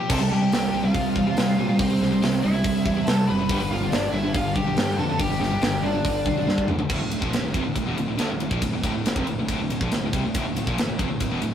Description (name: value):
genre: heavy metal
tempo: 141 BPM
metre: 4/4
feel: straight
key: D minor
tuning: A4 = 442 Hz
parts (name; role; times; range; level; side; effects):
- bluesy overdriven lead guitar; melody; 0.0-6.6 s; C5 to B5; -30 LUFS; left 2 dB; distortion
- high-gain lead guitar; second line; 0.0-6.7 s; C4 to B4; -31 LUFS; right 1 dB; distortion
- rich studio string section; sustained chords; 0.0-6.9 s; C3 to B4; -40 LUFS; left 1 dB; none
- heavy high-gain guitar; riff; 0.0-11.5 s; D2 to C4; -28 LUFS; left 6 dB; distortion
- sludgy distorted guitar; riff; 0.1-11.5 s; D2 to C4; -25 LUFS; right 4 dB; overdrive
- growling fingered electric bass; bass; 0.1-11.5 s; D1 to C3; -31 LUFS; equal; overdrive
- tight metal drum kit; drums; 0.1-11.5 s; crash cymbal, hi-hat, kick drum, ride cymbal, snare drum, toms; -27 LUFS; equal; none
room: moderate studio ambience, RT60 0.5 s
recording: rough rehearsal-room recording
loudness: -21 LUFS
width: side -9 dB against mid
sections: 0.0-6.9 A section; 6.9-11.5 B section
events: drum fill 6.5-6.9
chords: 0.1 C; 3.5 G; 6.9 Dm